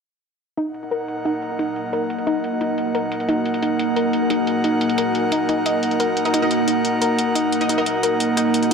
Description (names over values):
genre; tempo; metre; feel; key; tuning
dark technical drum and bass; 177 BPM; 4/4; straight; Eb minor; A4 = 440 Hz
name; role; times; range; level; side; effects
deep dark ambient pad; sustained chords; 1.4-8.7 s; Bb3 to Ab5; -22 LUFS; equal; chorus, built-in reverb
soft round pluck; arpeggios; 0.6-8.7 s; Eb4 to Eb5; -24 LUFS; left 2 dB; analog chorus, vintage 12-bit sampler grit, tape echo
electronic hi-hat; drums; 0.6-8.7 s; none; -28 LUFS; equal; low-pass filter on hats, low-pass filter on room
airy breathy pad; texture; 0.6-8.7 s; Eb4 to Gb5; -23 LUFS; right 1 dB; chorus
orchestra-hit-like synth stab; stabs; 6.3-7.9 s; Eb4 to Eb5; -26 LUFS; equal; built-in reverb, tape echo
room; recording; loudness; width
moderate digital room reverb, RT60 1.2 s, digital ambience; none; -18 LUFS; side -5 dB against mid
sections
0.6-8.7 A section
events
filter sweep on drum 0.6-8.7; filter sweep on synth pluck 0.6-8.7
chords
0.6 Ebm